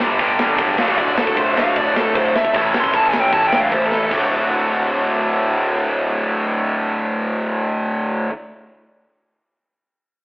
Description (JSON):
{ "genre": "punk rock", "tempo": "153 BPM", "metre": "4/4", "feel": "straight", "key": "D major", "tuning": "A4 = 441 Hz", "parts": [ { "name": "distorted electric guitar", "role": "riff", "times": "0.0-8.3 s", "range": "D2 to A3", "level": "-22 LUFS", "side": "equal", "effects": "overdrive" }, { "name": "tight distorted guitar", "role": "riff", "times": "0.0-8.3 s", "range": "D2 to A4", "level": "-20 LUFS", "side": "equal", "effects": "distortion" }, { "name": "tight distorted guitar", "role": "riff", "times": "0.0-1.0 s", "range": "D2 to G3", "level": "-22 LUFS", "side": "equal", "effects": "distortion" }, { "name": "fuzz picked electric bass", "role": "bass", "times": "0.0-8.3 s", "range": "D1 to G2", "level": "-24 LUFS", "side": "equal", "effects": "overdrive" }, { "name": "tight metal drum kit", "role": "drums", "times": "0.0-4.2 s", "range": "crash cymbal, hi-hat, kick drum, snare drum", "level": "-24 LUFS", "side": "equal", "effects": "none" }, { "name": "dark smooth lead guitar", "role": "melody", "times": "0.8-4.1 s", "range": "A4 to C6", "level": "-18 LUFS", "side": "equal", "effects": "overdrive" } ], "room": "moderate stone room reverb, RT60 1.4 s", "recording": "rough rehearsal-room recording, warm saturation, telephone sound", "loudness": "-15 LUFS", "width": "side -39 dB against mid", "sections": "0.0-4.1 A section; 4.1-7.3 B section", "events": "lead electric guitar solo 0.0-4.1; drum fill 3.9", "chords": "0.0 G; 0.8 D; 2.5 A; 4.1 D" }